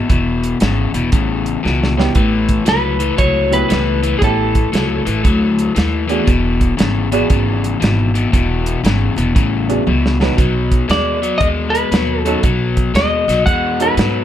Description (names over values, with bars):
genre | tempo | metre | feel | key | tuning
electric blues shuffle | 117 BPM | 4/4 | swing 65% on 8ths | E major | A4 = 436 Hz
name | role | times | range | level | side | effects
overdriven electric guitar | riff | 0.0-14.2 s | E2 to G#3 | -18 LUFS | left 5 dB | none
upright bass | bass | 0.1-14.2 s | E1 to G#2 | -19 LUFS | equal | none
warm soul drum kit | drums | 0.1-14.1 s | hi-hat, kick drum, snare drum, toms | -16 LUFS | right 1 dB | none
warm upright piano | accompaniment | 2.0-14.2 s | B3 to D5 | -21 LUFS | right 6 dB | none
lightly driven lead guitar | melody | 2.7-5.2, 10.9-14.2 s | G#4 to F#5 | -18 LUFS | equal | plate reverb, digital delay
room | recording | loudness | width
light reverb | none | -13 LUFS | side -11 dB against mid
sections
0.0-14.2 A section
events
drum fill 1.6-2.2, 9.9-10.4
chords
0.0 E; 2.2 A7; 6.3 E7; 10.4 B7